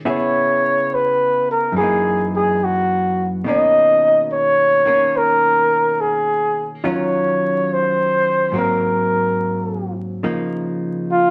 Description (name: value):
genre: jazz ballad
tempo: 71 BPM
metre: 4/4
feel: swing 68% on 8ths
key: unclear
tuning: A4 = 440 Hz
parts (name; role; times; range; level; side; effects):
- hollow-body jazz guitar; accompaniment; 0.0-11.3 s; Gb2 to Ab4; -25 LUFS; equal; none
- breathy flugelhorn; melody; 0.1-11.3 s; F4 to D#5; -18 LUFS; equal; none
room: wet studio reverb, RT60 0.9 s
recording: vinyl crackle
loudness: -18 LUFS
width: mono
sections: 0.0-11.3 A section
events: none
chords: 0.1 Dbm7; 1.7 Gb6; 3.4 Bmaj9; 6.8 Ebm9; 8.5 Ab9; 10.2 Db69